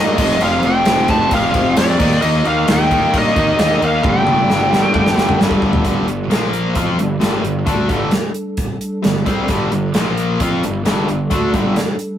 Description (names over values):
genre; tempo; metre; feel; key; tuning
hard rock; 132 BPM; 4/4; straight; G minor; A4 = 438 Hz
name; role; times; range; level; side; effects
biting lead guitar; melody; 0.0-5.4 s; D5 to A5; -17 LUFS; right 1 dB; overdrive
dark analog pad; sustained chords; 0.1-12.2 s; G3 to G5; -28 LUFS; equal; none
distorted electric guitar; riff; 0.0-11.8 s; F2 to F4; -19 LUFS; left 4 dB; overdrive
scooped high-gain guitar; riff; 0.0-11.8 s; F2 to F4; -22 LUFS; right 3 dB; distortion
fuzz fingered electric bass; bass; 0.0-11.8 s; F1 to G2; -21 LUFS; equal; overdrive
gated 80s drum kit; drums; 0.2-12.1 s; crash cymbal, hi-hat, kick drum, snare drum, toms; -18 LUFS; equal; none
room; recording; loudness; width
moderate small room reverb, RT60 0.5 s; rough rehearsal-room recording; -13 LUFS; side -10 dB against mid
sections
0.0-5.9 A section; 5.9-12.2 B section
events
drum fill 4.0-5.9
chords
0.2 F5; 2.0 Eb; 4.0 G5; 6.3 Bb5; 6.8 G5; 9.9 Bb5; 10.4 G5